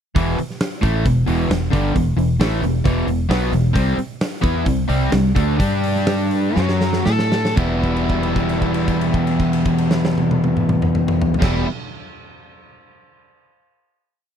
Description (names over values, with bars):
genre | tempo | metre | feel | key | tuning
classic rock | 115-134 BPM | 4/4 | straight | E minor | A4 = 440 Hz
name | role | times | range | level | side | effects
crunchy overdriven guitar | riff | 0.2-11.7 s | E2 to A4 | -18 LUFS | equal | none
fingered electric bass | bass | 0.2-11.6 s | E1 to A2 | -21 LUFS | equal | none
big rock drum kit | drums | 0.2-11.5 s | crash cymbal, hi-hat, kick drum, snare drum, toms | -22 LUFS | equal | none
room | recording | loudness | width
light reverb | dry, close 1970s-style studio recording | -16 LUFS | side -8 dB against mid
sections
0.2-7.6 riff; 7.6-11.7 final chord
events
slowing down 3.8-7.6; drum fill 6.6-7.6; held note 7.6-11.4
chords
0.2 Em; 3.8 C5; 5.6 G5; 6.6 F#5; 7.1 A5; 7.6 Em